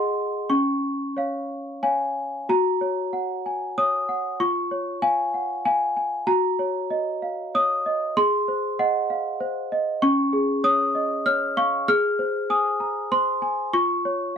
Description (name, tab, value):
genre	classical, lullaby for celesta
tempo	96 BPM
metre	3/4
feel	straight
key	Db major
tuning	A4 = 440 Hz
part	worn celesta	solo	0.0-14.4 s	Db4 to F6	-21 LUFS	equal	none
room	light reverb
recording	dry, close 1970s-style studio recording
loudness	-21 LUFS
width	side -7 dB against mid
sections	0.0-2.5 A section; 2.5-14.4 B section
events	none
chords	0.5 Db; 2.5 Gb; 4.4 Db/F; 6.3 Ebm7/Gb; 8.2 Ab; 10.0 Db; 11.9 Ab; 13.7 Db/F